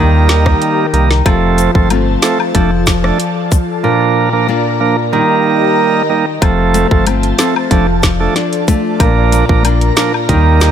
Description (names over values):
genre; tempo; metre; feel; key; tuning
dancehall; 93 BPM; 4/4; straight; unclear; A4 = 440 Hz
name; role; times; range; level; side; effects
bright tonewheel organ; accompaniment; 0.0-10.7 s; F3 to Bb4; -15 LUFS; right 6 dB; none
airy breathy pad; sustained chords; 0.0-10.7 s; F4 to Bb5; -19 LUFS; equal; chorus, phaser, sidechain pumping
nylon-string guitar; arpeggios; 0.0-10.7 s; Bb2 to G4; -17 LUFS; left 6 dB; none
sub bass with octave; bass; 0.0-10.7 s; F1 to Eb2; -14 LUFS; equal; none
island pop drum kit; drums; 0.3-10.7 s; hi-hat, kick drum, rim click, snare drum; -14 LUFS; equal; none
woodblock and cabasa; percussion; 1.3-10.7 s; none; -22 LUFS; left 10 dB; none
room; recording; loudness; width
light reverb; none; -10 LUFS; side -9 dB against mid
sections
0.0-6.4 A section; 6.4-10.7 B section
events
none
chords
0.0 Eb; 1.3 F; 2.5 Dm/F; 3.8 Bb; 5.1 Eb; 6.4 F; 7.7 Dm/F; 9.0 Bb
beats
0.61 | 1.26 1.90 2.55 3.19 | 3.84 4.48 5.13 5.78 | 6.42 7.07 7.71 8.36 | 9.00 9.65 10.29